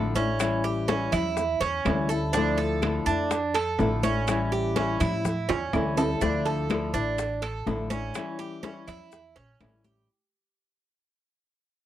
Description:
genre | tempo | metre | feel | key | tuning
latin, Cuban son and guajira | 124 BPM | 4/4 | straight | D harmonic minor | A4 = 440 Hz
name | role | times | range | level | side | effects
flamenco guitar | accompaniment | 0.0-10.1 s | D3 to E4 | -29 LUFS | left 5 dB | none
Cuban tres | arpeggios | 0.0-10.1 s | C#4 to A4 | -29 LUFS | right 5 dB | none
upright bass | bass | 0.0-10.0 s | A1 to A2 | -31 LUFS | equal | none
bongos | percussion | 0.2-10.1 s | none | -34 LUFS | left 7 dB | none
congas | percussion | 0.2-10.1 s | none | -33 LUFS | left 2 dB | none
maracas | percussion | 0.2-10.1 s | none | -44 LUFS | left 15 dB | none
timbales | percussion | 0.2-9.8 s | none | -33 LUFS | right 6 dB | none
claves | percussion | 0.4-9.8 s | none | -39 LUFS | left 3 dB | none
room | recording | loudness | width
little or no reverb | dry, close 1970s-style studio recording | -24 LUFS | side -12 dB against mid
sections
0.0-6.2 A section; 6.2-10.1 B section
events
drum fill 5.5-6.2; fade-out 6.2-10.1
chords
0.4 A7; 2.3 Dmadd9; 4.3 A7; 6.2 Dmadd9; 8.2 A7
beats
| 0.40 0.89 1.37 1.86 | 2.34 2.83 3.31 3.80 | 4.28 4.77 5.25 5.74 | 6.22 6.70 7.19 7.67 | 8.16 8.64 9.12 9.61

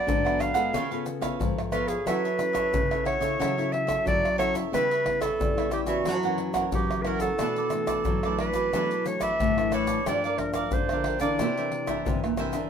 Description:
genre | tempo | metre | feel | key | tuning
samba and choro | 90 BPM | 4/4 | straight | unclear | A4 = 438 Hz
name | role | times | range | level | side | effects
clear clarinet | melody | 0.0-12.3 s | F#4 to F5 | -27 LUFS | right 1 dB | none
cavaquinho | accompaniment | 0.0-12.7 s | D4 to F#5 | -32 LUFS | right 7 dB | none
nylon-string guitar | accompaniment | 0.0-12.7 s | F#2 to A4 | -33 LUFS | left 5 dB | none
nylon-string guitar | bass | 0.1-12.7 s | G2 to G#3 | -32 LUFS | equal | none
tube shaker, surdo, pandeiro and tamborim | percussion | 0.1-12.7 s | none | -31 LUFS | left 1 dB | none
room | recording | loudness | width
moderate studio ambience, RT60 0.5 s | minimal, uncompressed stereo recording | -24 LUFS | side -7 dB against mid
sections
0.0-12.7 A section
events
none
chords
0.0 G#m7b5; 0.7 C#7b13; 2.1 F#m7; 4.7 C#m7b5; 6.1 F#7; 7.4 Bm7; 10.1 Gm7; 11.4 C9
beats
0.07 0.74 1.41 | 2.07 2.74 3.40 4.07 | 4.74 5.40 6.07 6.74 | 7.40 8.07 8.74 9.40 | 10.07 10.73 11.40 12.07

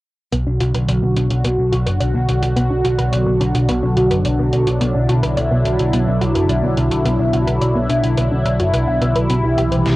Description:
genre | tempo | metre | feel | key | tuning
synthwave | 107 BPM | 4/4 | straight | B minor | A4 = 440 Hz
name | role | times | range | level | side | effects
phased analog pad | sustained chords | 0.3-10.0 s | B2 to G4 | -18 LUFS | equal | phaser, chorus, cassette tape
wide unison pluck | arpeggios | 0.3-9.9 s | B3 to F#5 | -25 LUFS | equal | cassette tape, analog delay
picked electric bass | bass | 0.3-10.0 s | F#1 to B1 | -18 LUFS | equal | low-pass filter
detuned 8-bit digital drum machine | drums | 0.3-10.0 s | hi-hat, snare drum | -29 LUFS | equal | cassette tape
room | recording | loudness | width
moderate booth ambience, RT60 0.2 s | home recording on cassette | -15 LUFS | side -18 dB against mid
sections
0.3-10.0 A section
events
filter sweep on synth arpeggio sound 0.3-10.0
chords
0.3 Bm; 9.3 C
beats
| 0.32 0.88 1.45 2.01 | 2.57 3.13 3.69 4.25 | 4.81 5.37 5.93 6.49 | 7.05 7.61 8.17 8.73 | 9.30 9.86

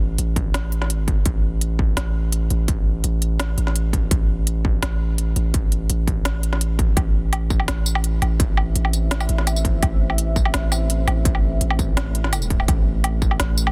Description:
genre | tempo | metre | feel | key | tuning
half-time drum and bass | 168 BPM | 4/4 | half-time | A minor | A4 = 442 Hz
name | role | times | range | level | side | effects
long sustained 808-style bass | bass | 0.0-13.7 s | A1 | -23 LUFS | equal | none
organic electronic drum kit | drums | 0.2-13.7 s | hi-hat, snare drum, tambourine, woodblock | -28 LUFS | equal | overdrive
electronic kick drum | drums | 0.4-13.3 s | none | -24 LUFS | equal | distortion
deep dark ambient pad | sustained chords | 8.1-13.7 s | A3 to E5 | -33 LUFS | equal | chorus, built-in reverb, sidechain pumping
room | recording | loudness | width
digital ambience | dense, heavily limited modern master | -21 LUFS | mono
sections
0.0-13.7 A section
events
none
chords
0.0 Am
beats
0.18 0.54 0.90 | 1.25 1.61 1.97 2.33 | 2.68 3.04 3.40 3.75 | 4.11 4.47 4.83 5.18 | 5.54 5.90 6.25 6.61 | 6.97 7.33 7.68 8.04 | 8.40 8.76 9.11 9.47 | 9.83 10.18 10.54 10.90 | 11.26 11.61 11.97 12.33 | 12.68 13.04 13.40

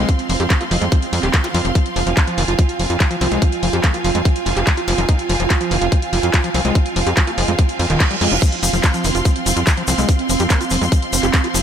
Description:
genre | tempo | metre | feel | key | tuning
psychedelic trance | 144 BPM | 4/4 | straight | F minor | A4 = 440 Hz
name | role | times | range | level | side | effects
resonant blip pluck | second line | 0.0-10.6 s | Ab3 to Eb4 | -35 LUFS | right 3 dB | none
pulsing gated texture | sustained chords | 0.0-11.6 s | F3 to F4 | -24 LUFS | right 6 dB | chorus, built-in reverb, sidechain pumping
overdriven acid bass | riff | 0.0-11.6 s | Eb3 to G4 | -24 LUFS | moving between left 6 dB and right 5 dB | distortion, auto-pan, sidechain pumping, dub echo
tight sequencer bass | bass | 0.0-11.6 s | Eb1 to F2 | -20 LUFS | equal | none
bright studio string section | texture | 0.0-11.6 s | C4 to C6 | -24 LUFS | right 1 dB | sidechain pumping
electronic kick drum | drums | 0.1-11.4 s | none | -15 LUFS | equal | none
techno drum kit | drums | 0.1-11.6 s | crash cymbal, handclaps, hi-hat | -23 LUFS | equal | none
zap and reverse cymbal | sound effects | 1.4-1.5, 4.9-5.0, 7.8-8.4 s | none | -25 LUFS | right 6 dB | none
egg shaker | percussion | 8.4-11.6 s | none | -24 LUFS | left 4 dB | none
room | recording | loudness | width
light reverb, digital ambience | none | -14 LUFS | side -8 dB against mid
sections
0.0-11.6 A section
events
reverse cymbal 7.8-8.4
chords
0.0 F5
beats
| 0.09 0.50 0.92 1.34 | 1.75 2.17 2.59 3.00 | 3.42 3.84 4.25 4.67 | 5.09 5.50 5.92 6.34 | 6.75 7.17 7.59 8.00 | 8.42 8.84 9.25 9.67 | 10.09 10.50 10.92 11.34

